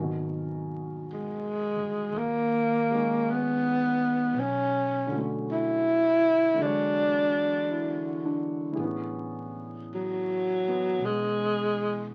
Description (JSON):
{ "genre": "jazz ballad", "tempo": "54 BPM", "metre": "4/4", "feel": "swing 68% on 8ths", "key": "G# minor", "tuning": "A4 = 439 Hz", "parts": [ { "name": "dark grand piano", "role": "accompaniment", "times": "0.0-12.1 s", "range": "B2 to C#5", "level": "-36 LUFS", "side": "equal", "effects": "none" }, { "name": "upright bass", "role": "bass", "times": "0.0-12.1 s", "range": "E1 to E2", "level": "-42 LUFS", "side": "equal", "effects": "none" }, { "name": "breathy tenor saxophone", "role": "melody", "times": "1.1-12.1 s", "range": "F#3 to E4", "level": "-27 LUFS", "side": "equal", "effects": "none" } ], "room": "moderate studio ambience, RT60 0.5 s", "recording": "very old 78 rpm record, vinyl crackle", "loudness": "-27 LUFS", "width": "mono", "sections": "0.0-12.1 A section", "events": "none", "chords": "0.0 G#m9; 4.4 Bm9; 6.6 E13; 8.8 Amaj9", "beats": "1.03 2.14 3.25 | 4.36 5.47 6.57 7.68 | 8.78 9.88 10.98 12.09" }